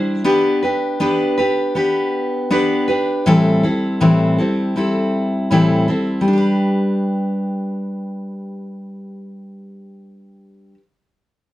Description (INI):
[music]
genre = pop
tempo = 80 BPM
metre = 4/4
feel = swing 55% on 16ths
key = G major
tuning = A4 = 441 Hz
[part]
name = picked steel-string acoustic guitar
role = accompaniment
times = 0.0-10.8 s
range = A2 to C5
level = -16 LUFS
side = left 1 dB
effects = none
[sound]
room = moderate studio reverb, RT60 0.8 s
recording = dark, warm production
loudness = -15 LUFS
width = side -15 dB against mid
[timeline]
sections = 0.0-6.3 A section; 6.3-9.3 B section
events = none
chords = 0.3 G/B; 3.3 Am7; 6.3 G